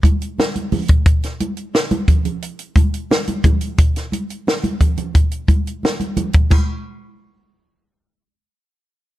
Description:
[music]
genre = soul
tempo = 88 BPM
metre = 4/4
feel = straight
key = none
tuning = none
[part]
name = compact cocktail drum kit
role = drums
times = 0.0-6.7 s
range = hi-hat, kick drum, snare drum, splash cymbal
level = -15 LUFS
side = equal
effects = none
[part]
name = congas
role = percussion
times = 0.0-6.8 s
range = none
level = -23 LUFS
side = right 2 dB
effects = none
[sound]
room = little or no reverb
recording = lossy compression artefacts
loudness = -15 LUFS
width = side -15 dB against mid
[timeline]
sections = 0.0-6.5 A section; 6.5-9.2 B section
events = none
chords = none

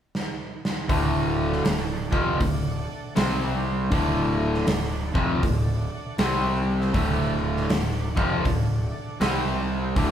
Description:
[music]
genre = blues rock power trio and southern rock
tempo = 79 BPM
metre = 4/4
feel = swing 63% on 8ths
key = unclear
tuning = A4 = 440 Hz
[part]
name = big rock drum kit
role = drums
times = 0.1-10.1 s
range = hi-hat, kick drum, snare drum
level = -27 LUFS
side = right 1 dB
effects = none
[part]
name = overdriven tonewheel organ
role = sustained chords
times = 0.9-10.1 s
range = A3 to F#5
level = -37 LUFS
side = right 3 dB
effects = chorus vibrato, slow rotary speaker
[part]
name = overdriven semi-hollow guitar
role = riff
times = 0.9-10.1 s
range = D2 to C4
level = -24 LUFS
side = left 1 dB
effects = none
[part]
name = fuzz fingered electric bass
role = bass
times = 0.9-10.1 s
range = D1 to C2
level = -30 LUFS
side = equal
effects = overdrive
[sound]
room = moderate large studio reverb, RT60 1.1 s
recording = band playing live in one room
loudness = -22 LUFS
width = side -9 dB against mid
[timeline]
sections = 0.9-10.1 A section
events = drum fill 0.1-0.9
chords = 0.0 N.C.; 0.9 D; 3.2 C5; 3.9 D; 6.2 C5; 6.9 D; 9.2 C5

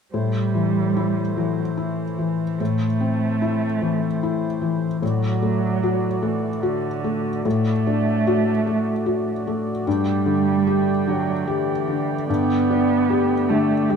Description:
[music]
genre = neoclassical piano and strings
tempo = 75 BPM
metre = 3/4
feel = rubato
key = A dorian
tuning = A4 = 440 Hz
[part]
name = muted cello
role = second line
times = 0.1-14.0 s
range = D3 to B3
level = -23 LUFS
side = right 5 dB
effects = none
[part]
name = felt-muted upright piano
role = accompaniment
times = 0.1-14.0 s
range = G2 to G4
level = -22 LUFS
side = left 4 dB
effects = none
[part]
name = pedal harmonium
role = sustained chords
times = 0.1-14.0 s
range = A3 to G5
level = -31 LUFS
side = right 2 dB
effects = none
[sound]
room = light reverb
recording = minimal, uncompressed stereo recording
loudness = -19 LUFS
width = side -6 dB against mid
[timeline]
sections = 0.1-14.0 A section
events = none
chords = 0.1 Am; 5.0 D/A; 9.9 Gsus2

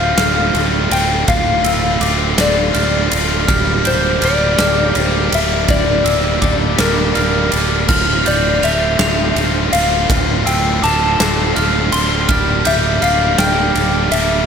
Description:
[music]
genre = post-rock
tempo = 54 BPM (dotted quarters)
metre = 6/8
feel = straight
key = D minor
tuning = A4 = 440 Hz
[part]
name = electric slide guitar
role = melody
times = 0.0-14.5 s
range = Bb4 to C6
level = -19 LUFS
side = left 3 dB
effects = digital delay
[part]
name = glockenspiel with hard plastic mallets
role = arpeggios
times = 0.0-14.1 s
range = D6 to F7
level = -22 LUFS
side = right 3 dB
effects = digital delay
[part]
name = distorted electric guitar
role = riff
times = 0.0-14.5 s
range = D2 to G4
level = -20 LUFS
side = left 12 dB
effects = overdrive
[part]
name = thick fuzz guitar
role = riff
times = 0.0-14.5 s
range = D2 to G4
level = -22 LUFS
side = right 14 dB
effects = distortion
[part]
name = fingered electric bass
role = bass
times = 0.0-14.5 s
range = D1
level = -20 LUFS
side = equal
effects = none
[part]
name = huge arena drum kit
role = drums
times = 0.2-14.3 s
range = crash cymbal, kick drum, ride cymbal, snare drum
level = -18 LUFS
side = right 1 dB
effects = none
[sound]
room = moderate large studio reverb, RT60 0.9 s, small room ambience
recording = none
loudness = -12 LUFS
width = side -7 dB against mid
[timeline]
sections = 0.0-14.5 A section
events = none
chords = 0.0 Dm7; 3.5 Gm7/D; 7.9 Dm7; 12.3 Gm7/D

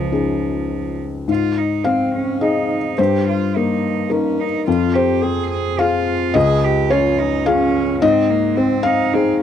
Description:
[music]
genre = neoclassical piano and strings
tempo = 107 BPM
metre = 3/4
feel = rubato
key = Ab major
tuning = A4 = 440 Hz
[part]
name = rich cello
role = second line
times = 0.0-9.4 s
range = F3 to Ab4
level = -22 LUFS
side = right 12 dB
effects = none
[part]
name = felt-muted upright piano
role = accompaniment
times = 0.0-9.4 s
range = Db2 to F5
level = -16 LUFS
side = left 3 dB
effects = none
[sound]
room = light reverb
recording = dry, close 1970s-style studio recording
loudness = -15 LUFS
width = side -9 dB against mid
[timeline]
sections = 0.0-1.3 A section; 1.3-9.4 B section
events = none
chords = 0.0 Dbadd9; 1.3 Ab; 3.0 Eb/G; 4.7 Fm; 6.4 Dbadd9; 8.0 Ab

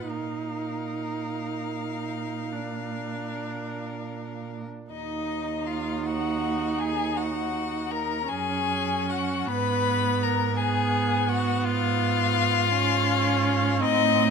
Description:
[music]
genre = classical, slow romantic movement for string quartet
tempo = 49-56 BPM (dotted quarters)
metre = 12/8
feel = rubato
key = Eb minor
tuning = A4 = 440 Hz
[part]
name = rich violin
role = melody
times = 0.0-14.3 s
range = Eb5 to Cb6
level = -29 LUFS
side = left 11 dB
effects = none
[part]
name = warm violin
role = second line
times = 0.0-14.3 s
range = Eb4 to Cb5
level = -32 LUFS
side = left 4 dB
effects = none
[part]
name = warm viola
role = accompaniment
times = 0.0-14.3 s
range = Cb4 to Eb4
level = -29 LUFS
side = right 4 dB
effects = none
[part]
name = rich cello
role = bass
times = 0.0-14.3 s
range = Eb2 to Bb2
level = -30 LUFS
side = right 5 dB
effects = none
[sound]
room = light reverb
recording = close, detailed microphones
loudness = -24 LUFS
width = side -6 dB against mid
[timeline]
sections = 0.0-4.9 A section; 4.9-14.3 A section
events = none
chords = 0.1 Bbsus4; 2.5 Bb; 4.9 Ebm; 9.5 Fdim/Ab

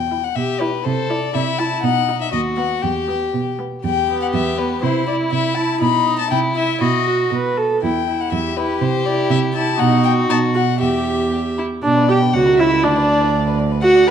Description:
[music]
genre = quick classical-period movement for string quartet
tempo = 121 BPM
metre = 2/4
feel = straight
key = E minor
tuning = A4 = 438 Hz
[part]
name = warm violin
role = melody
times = 0.0-14.1 s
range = A#4 to B5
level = -22 LUFS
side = left 11 dB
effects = none
[part]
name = dark cello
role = bass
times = 0.0-14.1 s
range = C#2 to C3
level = -21 LUFS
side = right 4 dB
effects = none
[part]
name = warm viola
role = accompaniment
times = 0.1-14.1 s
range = B3 to B4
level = -19 LUFS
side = right 2 dB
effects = none
[part]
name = warm violin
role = second line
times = 0.4-14.1 s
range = D#4 to G5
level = -23 LUFS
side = left 2 dB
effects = none
[sound]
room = wet recital hall reverb, RT60 1.5 s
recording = dark, warm production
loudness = -15 LUFS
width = side -8 dB against mid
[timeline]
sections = 0.0-3.8 A section; 3.8-11.8 A section; 11.8-14.1 B section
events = none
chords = 0.0 Em; 0.8 Am/C; 1.8 B; 2.3 B/D#; 2.8 Em; 4.8 C6; 5.8 B; 6.3 C; 6.8 B; 7.8 Em; 8.8 C69; 9.8 B; 10.3 B5; 10.8 Em; 11.8 Bm; 12.3 F#7/C#; 12.8 Bm/D

